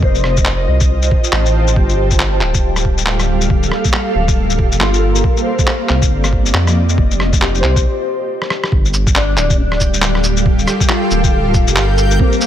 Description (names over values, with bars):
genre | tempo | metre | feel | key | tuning
future garage | 138 BPM | 4/4 | swing 60% on 16ths | G minor | A4 = 440 Hz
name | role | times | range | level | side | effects
mellow electric guitar | accompaniment | 0.0-12.5 s | Bb3 to C5 | -22 LUFS | left 3 dB | ensemble chorus, sidechain pumping, ping-pong delay
ethereal airy pad | sustained chords | 0.0-12.5 s | G3 to A5 | -19 LUFS | right 1 dB | ensemble chorus, built-in reverb, tremolo, vintage 12-bit sampler grit, sidechain pumping
dark detuned saw bass | bass | 0.0-12.2 s | D1 to F2 | -16 LUFS | equal | tube saturation, sidechain pumping
electronic kick drum | drums | 0.0-12.3 s | none | -15 LUFS | equal | none
electronic shaker, rim click, handclaps and cabasa | drums | 0.1-12.5 s | none | -19 LUFS | left 1 dB | none
backwards swelling texture | texture | 9.8-12.5 s | G4 to G5 | -27 LUFS | equal | built-in reverb
room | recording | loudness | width
light reverb | none | -12 LUFS | side -10 dB against mid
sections
0.0-8.7 A section; 8.7-12.5 B section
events
break 7.8-8.7; drum fill 8.4-8.7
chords
0.0 F7; 1.8 Gm9; 5.2 Cm7; 7.0 F7(no3); 8.7 Gm9